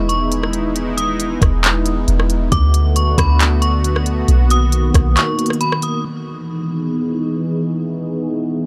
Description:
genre	hip hop, atmospheric cloud-rap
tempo	136 BPM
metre	4/4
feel	half-time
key	E lydian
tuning	A4 = 440 Hz
part	metallic FM bell	melody	0.0-8.7 s	B5 to D#6	-26 LUFS	equal	chorus, tremolo, low-pass filter, digital delay
part	sweeping resonant pad	sustained chords	0.0-8.7 s	D3 to G#4	-22 LUFS	equal	chorus, sidechain pumping, low-pass filter
part	soft 808-style bass	bass	0.0-5.2 s	E1 to D2	-18 LUFS	equal	none
part	smooth R&B drum kit	drums	0.1-5.9 s	handclaps, hi-hat, kick drum, rim click	-20 LUFS	equal	none
room	light reverb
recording	none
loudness	-17 LUFS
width	mono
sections	0.0-6.0 A section; 6.0-8.7 B section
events	break 5.2-6.0; filter sweep 6.0-8.7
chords	0.0 Emaj7; 2.5 D6; 4.3 Bmaj7; 6.0 Emaj7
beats	0.31 | 0.76 1.20 1.64 2.08 | 2.52 2.96 3.40 3.84 | 4.29 4.73 5.17 5.61 | 6.05 6.49 6.93 7.37 | 7.81 8.26

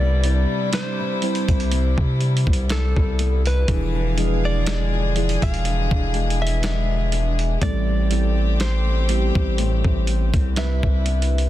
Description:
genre	contemporary R&B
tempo	61 BPM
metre	4/4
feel	swing 54% on 16ths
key	C major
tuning	A4 = 437 Hz
part	direct-recorded clean electric guitar	melody	0.0-11.5 s	A4 to F5	-29 LUFS	left 1 dB	tape echo
part	muted felt-like synth keys	accompaniment	0.0-11.5 s	F3 to D5	-28 LUFS	right 3 dB	chorus, phaser
part	warm chamber string section	sustained chords	0.0-11.5 s	C3 to F5	-30 LUFS	left 2 dB	none
part	flamenco guitar	arpeggios	0.0-11.5 s	A2 to F4	-31 LUFS	left 10 dB	none
part	long sustained 808-style bass	bass	0.0-11.5 s	E1 to C3	-20 LUFS	equal	none
part	dusty soul sampler-style drum kit	drums	0.2-11.5 s	hi-hat, kick drum, snare drum	-23 LUFS	equal	none
room	little or no reverb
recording	dense, heavily limited modern master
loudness	-18 LUFS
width	side -14 dB against mid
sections	0.0-11.5 A section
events	none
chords	0.0 Cmaj7; 3.7 E7b9; 7.6 Am7; 10.6 Cmaj7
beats	0.73 1.71 2.69 | 3.68 4.66 5.65 6.63 | 7.61 8.60 9.58 10.56

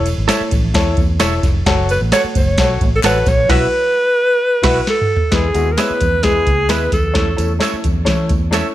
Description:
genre	uptempo 1960s-style soul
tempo	131 BPM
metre	4/4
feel	straight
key	E major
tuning	A4 = 440 Hz
part	clear upright piano	accompaniment	0.0-8.7 s	G#3 to C#5	-21 LUFS	left 4 dB	none
part	vintage muted fingered electric bass	bass	0.0-8.6 s	E1 to E3	-19 LUFS	equal	none
part	soft vintage rhythm box	drums	0.1-8.6 s	crash cymbal, hi-hat, kick drum, ride cymbal, snare drum, toms	-18 LUFS	equal	none
part	congas	percussion	0.1-8.4 s	none	-31 LUFS	right 9 dB	none
part	tambourine and handclaps	percussion	0.1-8.6 s	none	-30 LUFS	left 3 dB	none
part	direct-recorded clean electric guitar	stabs	0.3-8.7 s	F#4 to F#5	-23 LUFS	right 9 dB	none
part	breathy alto saxophone	melody	1.9-7.6 s	G#4 to C#5	-16 LUFS	right 1 dB	none
room	light reverb, studio reverb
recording	none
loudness	-13 LUFS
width	side -13 dB against mid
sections	0.0-5.3 A section; 5.3-8.7 B section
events	band accent 3.5-5.3; drum fill 4.9-5.3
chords	0.0 A/E; 1.7 F#m; 3.5 Bsus4; 5.3 E; 7.2 A/E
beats	0.29 0.75 1.21 | 1.67 2.12 2.58 3.04 | 3.50 3.96 4.42 4.87 | 5.33 5.79 6.25 6.70 | 7.16 7.62 8.08 8.53

